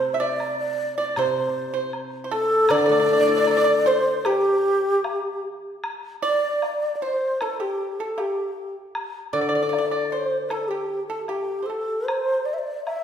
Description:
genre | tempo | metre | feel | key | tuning
chinese traditional, Chinese chamber ensemble | 77 BPM | 2/4 | straight | unclear | A4 = 440 Hz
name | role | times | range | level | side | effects
mellow xiao | melody | 0.0-13.0 s | G4 to E5 | -23 LUFS | equal | none
pipa | second line | 0.0-12.1 s | G4 to E5 | -27 LUFS | right 4 dB | none
guzheng | accompaniment | 0.0-5.0, 9.3-11.7 s | C3 to A4 | -25 LUFS | left 5 dB | none
woodblock | percussion | 0.4-13.0 s | none | -34 LUFS | left 1 dB | none
room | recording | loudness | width
wet recital hall reverb, RT60 1.7 s | heard from further back in the room | -21 LUFS | side -8 dB against mid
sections
0.0-5.8 A section; 5.8-13.0 B section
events
none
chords
none

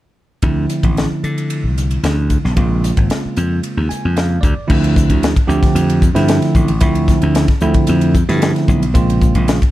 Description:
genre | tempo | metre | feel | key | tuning
electric jazz fusion | 113 BPM | 4/4 | straight | unclear | A4 = 439 Hz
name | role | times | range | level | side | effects
bell-like tine electric piano | accompaniment | 0.4-9.6 s | Db3 to Ab5 | -17 LUFS | right 2 dB | none
slap bass | bass | 0.4-9.6 s | Ab1 to D3 | -16 LUFS | equal | none
crisp fusion drum kit | drums | 0.4-9.7 s | crash cymbal, hi-hat, kick drum, ride cymbal, snare drum | -16 LUFS | left 1 dB | none
room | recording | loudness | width
little or no reverb | dark, warm production | -12 LUFS | side -15 dB against mid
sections
0.4-4.7 A section; 4.7-9.7 B section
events
tine electric piano fill 3.6-4.7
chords
0.4 Dm9; 2.6 Bbm9; 4.4 N.C.; 4.7 Dm9; 8.9 Bbm9

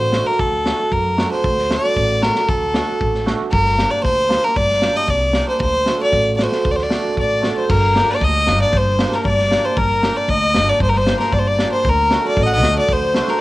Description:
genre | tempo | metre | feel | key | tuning
klezmer | 115 BPM | 4/4 | straight | unclear | A4 = 436 Hz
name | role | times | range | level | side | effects
clear violin | melody | 0.0-13.4 s | A4 to F#5 | -17 LUFS | equal | cassette tape
upright bass | bass | 0.0-13.2 s | G1 to F#2 | -21 LUFS | equal | none
cimbalom | accompaniment | 0.1-13.3 s | A3 to G4 | -24 LUFS | right 5 dB | cassette tape
crunchy breakbeat drum kit | drums | 0.1-13.4 s | crash cymbal, kick drum, snare drum | -22 LUFS | equal | cassette tape
accordion | second line | 7.2-13.4 s | Bb4 to Eb5 | -25 LUFS | left 6 dB | cassette tape
room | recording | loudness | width
studio reverb | home recording on cassette | -14 LUFS | side -17 dB against mid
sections
0.0-7.7 A section; 7.7-13.4 B section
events
none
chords
0.0 D; 3.5 Gm; 5.6 D; 7.7 Gm; 11.9 D

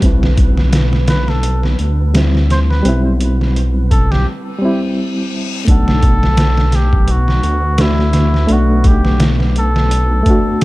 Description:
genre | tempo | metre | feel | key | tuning
trip hop | 85 BPM | 4/4 | swing 56% on 16ths | B phrygian | A4 = 442 Hz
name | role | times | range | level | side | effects
reed electric piano | accompaniment | 0.0-10.6 s | G3 to F#5 | -18 LUFS | equal | fast tremolo, vintage 12-bit sampler grit
dark detuned saw bass | bass | 0.0-10.2 s | B1 to D2 | -14 LUFS | equal | none
trip hop sampler-style drum kit | drums | 0.0-10.6 s | hi-hat, kick drum, snare drum | -15 LUFS | equal | overdrive
wind-like tuned noise texture | texture | 0.0-10.6 s | B3 to B4 | -31 LUFS | right 1 dB | built-in reverb
trumpet with cup mute | melody | 1.1-10.6 s | E4 to C5 | -22 LUFS | equal | tape echo
reverse cymbal | sound effects | 4.5-5.7 s | none | -27 LUFS | left 6 dB | none
room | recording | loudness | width
digital ambience | dark, warm production | -11 LUFS | side -19 dB against mid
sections
0.0-5.7 A section; 5.7-10.6 B section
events
filter sweep on reed electric piano 0.0-5.7; break 4.3-5.7; reverse cymbal 4.5-5.7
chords
0.0 C/B; 5.7 Bm7

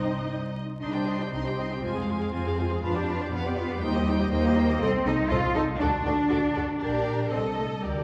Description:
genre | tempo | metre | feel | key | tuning
quick classical-period movement for string orchestra | 120 BPM | 2/4 | rubato | C minor | A4 = 441 Hz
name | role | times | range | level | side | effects
rich studio violin section | melody | 0.0-8.0 s | D5 to C6 | -40 LUFS | equal | none
rich symphonic violin section | second line | 0.0-8.0 s | C4 to Eb5 | -37 LUFS | equal | none
warm symphonic viola section | accompaniment | 0.0-8.0 s | Eb4 to A4 | -35 LUFS | equal | none
rich symphonic double bass section | bass | 0.0-8.0 s | Bb1 to F2 | -32 LUFS | equal | none
warm symphonic cello section | bass | 0.0-8.0 s | C3 to F4 | -31 LUFS | equal | none
room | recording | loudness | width
wet scoring stage reverb, RT60 1.8 s | heard from further back in the room, vinyl crackle | -27 LUFS | mono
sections
0.8-8.0 A section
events
none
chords
0.0 Cm; 1.8 Fm; 2.8 G7/F; 3.8 Cm/Eb; 4.8 Adim/C; 5.8 D; 6.8 Gm/Bb; 7.3 Adim/C

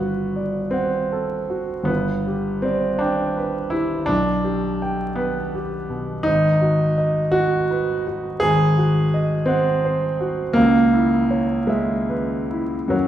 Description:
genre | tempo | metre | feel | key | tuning
classical, romantic nocturne for solo piano | 46-58 BPM (dotted quarters) | 12/8 | rubato | G major | A4 = 439 Hz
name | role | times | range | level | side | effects
warm grand piano | solo | 0.0-13.1 s | G1 to G5 | -18 LUFS | right 1 dB | none
room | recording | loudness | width
wet recital hall reverb, RT60 1.8 s | recorded in a church or concert hall, vinyl crackle | -18 LUFS | side -11 dB against mid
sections
0.0-13.1 A section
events
none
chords
0.0 D7/G; 1.9 G; 4.1 G/B; 6.3 G#m7; 8.4 G#7; 10.6 C#m7

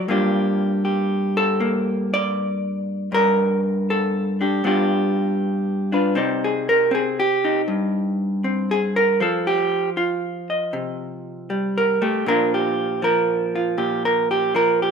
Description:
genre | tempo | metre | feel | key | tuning
solo jazz | 79 BPM | 4/4 | swing 68% on 8ths | G minor, C minor from 6.2 s | A4 = 440 Hz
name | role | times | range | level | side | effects
vintage hollow-body jazz guitar | solo | 0.0-14.9 s | G2 to Eb5 | -18 LUFS | equal | none
room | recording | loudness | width
moderate large studio reverb, RT60 1.3 s | minimal, uncompressed stereo recording | -18 LUFS | side -6 dB against mid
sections
0.0-6.2 A section; 6.2-14.9 B section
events
hollow-body jazz guitar solo 6.2-14.9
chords
0.1 Gm9; 4.6 G7; 6.2 Cmadd9; 9.2 F9; 12.2 Bb6

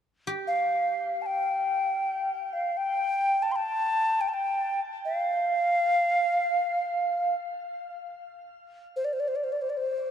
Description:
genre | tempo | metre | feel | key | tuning
world meditative, free-time meditation music | free time | none | none | unclear | A4 = 438 Hz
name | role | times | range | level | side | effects
guzheng | texture | 0.3-8.8 s | G4 | -40 LUFS | right 2 dB | shimmer reverb
breathy alto ocarina | melody | 0.5-10.1 s | C5 to C6 | -25 LUFS | equal | shimmer reverb
room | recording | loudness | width
wet huge ambient reverb, RT60 3.9 s | dark, warm production | -25 LUFS | side -8 dB against mid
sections
0.0-10.1 A section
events
none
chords
none

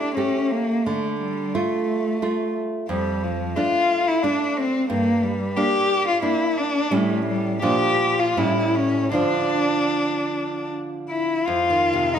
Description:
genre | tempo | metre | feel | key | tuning
romantic duo for cello and classical guitar | 74-91 BPM | 3/4 | rubato | D minor | A4 = 439 Hz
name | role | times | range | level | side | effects
warm cello | melody | 0.0-12.2 s | F3 to G4 | -21 LUFS | left 2 dB | none
nylon-string guitar | accompaniment | 0.0-12.2 s | F2 to G4 | -24 LUFS | right 3 dB | none
room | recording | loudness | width
wet recital hall reverb, RT60 1.4 s | recorded in a church or concert hall | -20 LUFS | side -8 dB against mid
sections
0.0-11.5 A section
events
none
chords
0.0 A7; 0.9 Dm; 2.9 Dm/F; 4.9 Gm; 6.9 A7; 7.6 Bb; 8.4 A7; 9.2 Dm; 11.5 F7(no3)

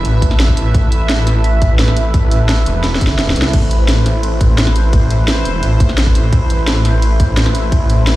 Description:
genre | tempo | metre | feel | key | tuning
dark technical drum and bass | 172 BPM | 4/4 | straight | A minor | A4 = 441 Hz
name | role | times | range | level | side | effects
sweeping resonant pad | sustained chords | 0.0-8.2 s | A3 to E5 | -20 LUFS | right 1 dB | chorus, sidechain pumping
snarling distorted saw bass | bass | 0.0-8.2 s | E1 to C2 | -13 LUFS | equal | distortion, overdrive
drum and bass drum kit | drums | 0.0-8.1 s | crash cymbal, hi-hat, ride cymbal, snare drum | -19 LUFS | equal | studio reverb
electronic kick drum | drums | 0.2-7.8 s | none | -13 LUFS | equal | studio reverb
room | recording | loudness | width
light reverb, digital ambience | played on a big sound system in a bare room, large studio reverb, faint mains hum | -11 LUFS | side -16 dB against mid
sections
0.0-8.2 A section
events
drum fill 2.8-3.5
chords
0.0 Amadd9

